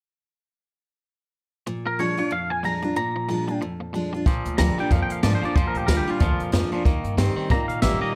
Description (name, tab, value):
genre	rockabilly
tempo	185 BPM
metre	4/4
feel	swing 59% on 8ths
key	Bb mixolydian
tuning	A4 = 440 Hz
part	picked steel-string acoustic guitar	accompaniment	1.7-8.1 s	F2 to G4	-30 LUFS	equal	none
part	twangy electric guitar	riff	1.7-8.1 s	Bb2 to C4	-32 LUFS	equal	none
part	twangy electric guitar	melody	1.9-8.1 s	F4 to Bb5	-30 LUFS	equal	plate reverb, tape echo
part	upright bass	bass	4.3-8.0 s	A1 to Bb2	-27 LUFS	equal	none
part	jazz brush drum kit	drums	4.3-7.9 s	hi-hat, kick drum, snare drum	-26 LUFS	equal	none
room	light reverb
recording	none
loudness	-23 LUFS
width	mono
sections	1.7-4.3 A section; 4.3-8.2 B section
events	none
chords	1.7 Bb7; 6.9 Eb7